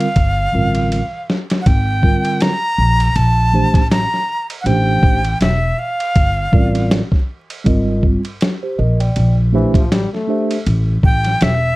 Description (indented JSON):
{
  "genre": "hip hop, jazz-hop",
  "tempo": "80 BPM",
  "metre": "4/4",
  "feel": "swing 58% on 16ths",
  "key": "G dorian",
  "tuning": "A4 = 439 Hz",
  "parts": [
    { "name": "breathy bright jazz flute", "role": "melody", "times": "0.0-11.8 s", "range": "E5 to Bb5", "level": "-18 LUFS", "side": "equal", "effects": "slapback echo" },
    { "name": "mellow tine electric piano", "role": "accompaniment", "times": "0.0-10.6 s", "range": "D3 to G5", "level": "-19 LUFS", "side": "right 2 dB", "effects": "fast stereo tremolo" },
    { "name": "lo-fi sampler-style drum kit", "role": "drums", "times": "0.0-11.6 s", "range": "hi-hat, kick drum, ride cymbal, snare drum", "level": "-16 LUFS", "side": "equal", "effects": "none" },
    { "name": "upright bass", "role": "bass", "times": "0.2-11.7 s", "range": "E1 to Bb1", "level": "-16 LUFS", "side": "equal", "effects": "none" },
    { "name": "bright trombone", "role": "second line", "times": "9.5-10.6 s", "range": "E3 to A3", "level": "-22 LUFS", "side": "left 3 dB", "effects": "none" }
  ],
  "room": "little or no reverb",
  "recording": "dark, warm production, vinyl crackle",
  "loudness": "-13 LUFS",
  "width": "side -20 dB against mid",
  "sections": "0.0-11.8 A section",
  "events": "drum fill 0.9-1.7",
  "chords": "0.2 Gm11; 1.7 Abmaj9; 3.2 Bbmaj9; 4.7 Am7; 6.2 Gm11; 7.7 Abmaj9; 9.2 Bbmaj9; 10.7 A7(no3)",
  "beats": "0.16 0.91 | 1.66 2.41 3.16 3.91 | 4.66 5.41 6.16 6.91 | 7.66 8.41 9.16 9.91 | 10.66 11.41"
}